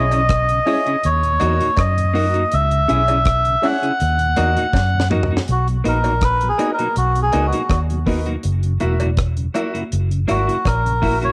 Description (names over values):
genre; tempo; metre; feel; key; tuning
roots reggae; 81 BPM; 4/4; straight; B major; A4 = 441 Hz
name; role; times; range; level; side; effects
melodica; melody; 0.0-11.3 s; F#4 to F#5; -21 LUFS; equal; cassette tape, tape echo
mellow tonewheel organ; accompaniment; 0.0-11.3 s; D#2 to E4; -33 LUFS; equal; none
semi-hollow electric guitar; accompaniment; 0.0-11.3 s; A#3 to G#4; -28 LUFS; equal; cassette tape, tape echo
clear concert grand piano; stabs; 0.0-11.2 s; E4 to E5; -29 LUFS; equal; cassette tape
vintage muted fingered electric bass; bass; 0.0-11.3 s; E1 to F#2; -22 LUFS; equal; none
deep reggae drum kit; drums; 0.1-11.3 s; hi-hat, kick drum, rim click, snare drum, toms; -25 LUFS; equal; cassette tape
cowbell; percussion; 0.1-10.8 s; none; -35 LUFS; equal; none
room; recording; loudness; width
moderate small room reverb, RT60 0.5 s; home recording on cassette; -18 LUFS; mono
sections
0.0-5.5 A section; 5.5-11.3 B section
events
drum fill 4.7-5.5; melodica solo 5.5-11.3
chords
0.0 C#m; 1.0 D#m; 2.5 C#m; 4.0 D#m; 5.5 Bmaj7; 8.4 F#7